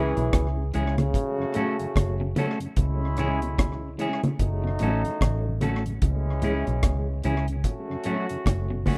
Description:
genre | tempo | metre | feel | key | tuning
roots reggae | 74 BPM | 4/4 | swing 60% on 16ths | C# minor | A4 = 437 Hz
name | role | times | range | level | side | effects
clear trombone | melody | 0.0-2.3 s | C#3 to E3 | -32 LUFS | equal | tape echo
clear trombone section | second line | 0.0-8.8 s | E3 to G#4 | -35 LUFS | equal | tape echo
mellow tonewheel organ | accompaniment | 0.0-9.0 s | F#2 to C#4 | -37 LUFS | equal | chorus vibrato, slow rotary speaker, tape echo
semi-hollow electric guitar | accompaniment | 0.0-9.0 s | F#3 to A4 | -33 LUFS | equal | tape echo
electric guitar at the edge of break-up | arpeggios | 0.0-9.0 s | A2 to C#3 | -40 LUFS | equal | none
vintage muted fingered electric bass | bass | 0.0-8.8 s | F#1 to C#2 | -29 LUFS | equal | none
deep reggae drum kit | drums | 0.2-9.0 s | hi-hat, kick drum, rim click | -29 LUFS | equal | tape echo
congas | percussion | 0.3-9.0 s | none | -32 LUFS | equal | none
room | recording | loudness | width
light reverb | rough home demo mix | -26 LUFS | mono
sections
0.0-9.0 A section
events
none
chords
0.0 C#m; 1.1 F#m; 2.8 C#m; 4.4 F#m; 6.0 C#m; 7.7 F#m

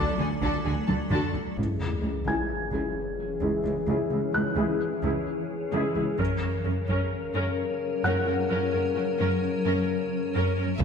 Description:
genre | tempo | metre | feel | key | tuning
cinematic, hybrid orchestral and electronic film score | 130 BPM | 5/4 | straight | C# phrygian | A4 = 441 Hz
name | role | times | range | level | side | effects
dark symphonic violin section | second line | 0.0-1.3, 10.8 s | G#4 to A5 | -34 LUFS | left 3 dB | none
warm symphonic viola section | accompaniment | 0.0-10.8 s | C#4 to A#4 | -32 LUFS | right 1 dB | low-pass filter
granular cloud pad | sustained chords | 0.0-10.8 s | E3 to D5 | -32 LUFS | left 2 dB | built-in reverb, low-pass filter
rich symphonic cello section | bass | 0.0-10.8 s | C#2 to D3 | -30 LUFS | right 2 dB | none
rich symphonic double bass section | bass | 0.0-1.2, 10.8 s | C#2 to D2 | -32 LUFS | right 3 dB | none
felt-muted upright piano | texture | 0.0-10.8 s | F#5 to G#6 | -35 LUFS | left 1 dB | tape echo
taiko ensemble | drums | 0.4-2.5, 6.2-7.1, 10.8 s | none | -33 LUFS | left 1 dB | none
mellow French horn section | sustained chords | 1.6-10.8 s | C#3 to A#4 | -30 LUFS | left 5 dB | low-pass filter
sub drop | sound effects | 1.6-3.9, 10.8 s | none | -34 LUFS | left 1 dB | none
rich symphonic violin section | melody | 10.8 s | E5 | -38 LUFS | left 5 dB | low-pass filter
smooth gliding synth bass | riff | 10.8 s | C#2 | -23 LUFS | right 6 dB | low-pass filter
punchy sub bass | bass | 10.8 s | C#2 | -23 LUFS | left 1 dB | none
room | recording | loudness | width
wet scoring stage reverb, RT60 1.6 s | lossy compression artefacts | -25 LUFS | side -6 dB against mid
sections
0.0-1.6 A section; 1.6-10.8 B section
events
drum fill 0.9-1.6; impact 1.6-3.9; filter sweep 1.6-10.8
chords
0.0 D; 1.6 C#m; 6.2 F#

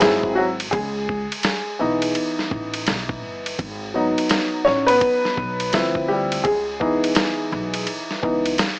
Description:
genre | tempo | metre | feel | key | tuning
hip hop, jazz-hop | 84 BPM | 4/4 | swing 61% on 16ths | C# minor | A4 = 440 Hz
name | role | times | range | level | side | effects
warm upright piano | accompaniment | 0.0-8.6 s | E3 to C#5 | -20 LUFS | equal | plate reverb
upright bass | bass | 0.0-8.6 s | G1 to D2 | -30 LUFS | equal | none
dusty soul sampler-style drum kit | drums | 0.0-8.8 s | hi-hat, kick drum, ride cymbal, snare drum | -24 LUFS | equal | none
room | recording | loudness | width
moderate studio reverb, RT60 0.5 s | vinyl crackle, small speaker sound | -19 LUFS | side -26 dB against mid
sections
0.0-8.8 A section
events
upright piano solo 0.0-8.8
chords
0.0 G#aug7; 0.7 C#m9; 3.6 G#m7; 5.7 Dm9; 6.4 C#m9

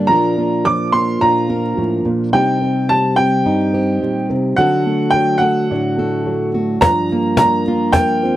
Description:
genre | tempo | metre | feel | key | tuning
acoustic folk duo or small band | 107 BPM | 4/4 | straight | unclear | A4 = 440 Hz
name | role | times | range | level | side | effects
fingerpicked plugged-in steel-string acoustic guitar | accompaniment | 0.0-8.4 s | G2 to Bb4 | -19 LUFS | left 2 dB | none
dark upright piano | arpeggios | 0.0-8.4 s | F3 to Eb4 | -19 LUFS | right 3 dB | none
clear upright piano | melody | 0.1-8.4 s | F#5 to D6 | -17 LUFS | right 1 dB | none
cajon | percussion | 6.8-8.1 s | none | -16 LUFS | left 2 dB | none
room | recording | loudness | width
light reverb | vinyl crackle | -14 LUFS | side -14 dB against mid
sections
0.0-6.8 A section; 6.8-8.4 B section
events
none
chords
0.1 Bb; 2.3 Cm; 4.6 D; 6.8 Gm7

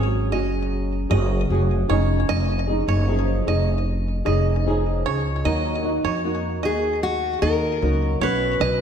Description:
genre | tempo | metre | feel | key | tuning
acoustic pop | 76 BPM | 4/4 | straight | unclear | A4 = 440 Hz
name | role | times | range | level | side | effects
vibraphone with soft mallets | second line | 0.0-0.7 s | F#4 | -36 LUFS | right 1 dB | none
flamenco guitar | accompaniment | 0.0-8.8 s | B2 to G#4 | -24 LUFS | right 1 dB | double-tracked left and right
upright bass | bass | 0.0-8.8 s | E#1 to E#2 | -22 LUFS | equal | none
bluegrass banjo | arpeggios | 0.3-8.8 s | C#5 to D#5 | -30 LUFS | right 5 dB | ping-pong delay
fingerpicked steel-string acoustic guitar | melody | 6.7-8.8 s | F#4 to B4 | -22 LUFS | left 2 dB | ping-pong delay
room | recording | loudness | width
light reverb, studio reverb | none | -19 LUFS | side -8 dB against mid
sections
0.0-8.8 A section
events
none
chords
0.0 C#add9/E#; 5.5 D#m; 8.2 Bsus2

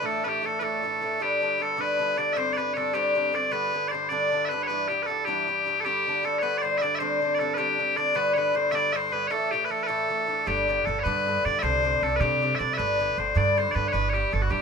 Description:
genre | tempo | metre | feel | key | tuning
celtic folk | 104 BPM (dotted quarters) | 6/8 | straight | G major | A4 = 440 Hz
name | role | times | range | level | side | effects
loud bright bagpipes | melody | 0.0-14.6 s | F#4 to E5 | -25 LUFS | left 1 dB | none
Irish bouzouki | accompaniment | 0.0-14.6 s | G2 to D4 | -27 LUFS | left 1 dB | none
upright bass | bass | 10.5-14.6 s | G1 to C3 | -28 LUFS | right 2 dB | none
room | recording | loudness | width
light reverb | minimal, uncompressed stereo recording | -23 LUFS | side -6 dB against mid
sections
0.0-5.8 A section; 5.8-14.6 A section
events
none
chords
0.0 Dsus2; 1.2 G; 2.4 Csus2; 3.5 G; 4.7 G6; 5.8 G; 7.0 Csus2; 8.2 G; 9.3 Dsus2; 10.5 G; 11.6 Csus2; 12.8 G; 13.9 G6

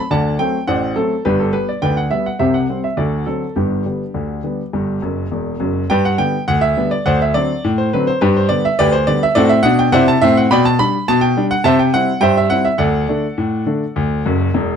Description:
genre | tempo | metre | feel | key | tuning
ragtime piano | 104 BPM | 2/4 | straight | G major | A4 = 440 Hz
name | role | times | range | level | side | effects
clear grand piano | solo | 0.0-14.8 s | E1 to B5 | -14 LUFS | equal | none
room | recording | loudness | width
light reverb | close, detailed microphones | -14 LUFS | side -7 dB against mid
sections
0.0-5.9 A section; 5.9-14.8 B section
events
grand piano fill 5.0-5.9, 14.3-14.8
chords
0.0 D7; 1.3 G; 2.4 C5; 3.0 D7; 3.6 G; 7.1 D7; 8.2 G; 9.4 D7/A; 10.5 G/B; 11.6 C; 12.8 D

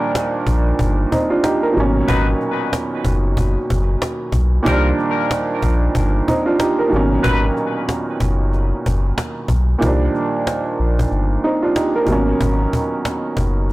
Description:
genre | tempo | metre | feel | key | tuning
hip hop, boom-bap hip-hop | 93 BPM | 4/4 | swing 59% on 16ths | unclear | A4 = 440 Hz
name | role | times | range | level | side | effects
warm upright piano | accompaniment | 0.0-13.7 s | Bb2 to Bb4 | -18 LUFS | right 2 dB | cassette tape, high-pass filter, low-pass filter
cajon | drums | 0.1-13.7 s | none | -23 LUFS | equal | none
sub bass with octave | bass | 0.5-13.7 s | Gb1 to C2 | -18 LUFS | equal | transformer saturation
clear horn section | stabs | 2.1-7.4 s | Gb3 to Cb5 | -25 LUFS | left 4 dB | high-pass filter, low-pass filter, ping-pong delay
room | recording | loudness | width
small room ambience | blown-out, overdriven recording, overdrive | -16 LUFS | side -18 dB against mid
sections
0.0-9.8 A section; 9.8-13.7 B section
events
none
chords
0.0 Cm11; 1.8 Abm11; 4.7 Cm11; 6.9 Abm11; 9.8 Cm11; 12.1 Abm11

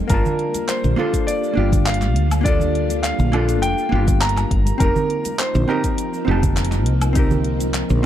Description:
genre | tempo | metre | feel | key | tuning
sunset chillout | 102 BPM | 4/4 | straight | G minor | A4 = 440 Hz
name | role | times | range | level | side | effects
hollow-body jazz guitar | accompaniment | 0.0-8.1 s | Bb3 to A5 | -24 LUFS | moving between left 3 dB and right 5 dB | auto-pan, tape echo
soft string machine | sustained chords | 0.0-8.1 s | F3 to F4 | -27 LUFS | left 1 dB | ensemble chorus
clear grand piano | melody | 0.1-8.1 s | Bb4 to Bb5 | -25 LUFS | equal | tape echo
woody fretless electric bass | bass | 0.1-8.1 s | F1 to D2 | -19 LUFS | equal | none
deep house drum kit | drums | 0.1-8.0 s | cabasa, handclaps, hi-hat, woodblock | -27 LUFS | left 1 dB | none
electronic kick drum | drums | 0.1-7.3 s | none | -20 LUFS | equal | none
congas | percussion | 0.3-8.0 s | none | -28 LUFS | right 3 dB | none
room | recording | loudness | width
light reverb, digital ambience | dark, warm production | -16 LUFS | side -11 dB against mid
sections
0.0-8.1 A section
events
none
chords
0.1 Gm7; 4.8 F7sus4

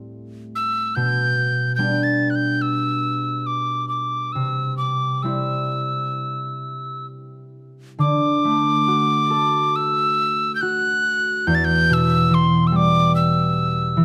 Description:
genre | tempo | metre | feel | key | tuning
celtic folk, Celtic slow air | 65-74 BPM | 4/4 | rubato | D mixolydian | A4 = 440 Hz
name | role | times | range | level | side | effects
concert harp | accompaniment | 0.0-14.0 s | E2 to A4 | -24 LUFS | equal | none
mellow wooden whistle | melody | 0.6-14.0 s | C6 to A6 | -23 LUFS | equal | none
room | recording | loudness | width
light reverb | close, detailed microphones | -20 LUFS | mono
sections
0.0-8.0 A section; 8.0-14.0 B section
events
none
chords
0.0 Am7; 1.0 G/B; 4.4 C; 8.0 Dadd9; 11.5 Em

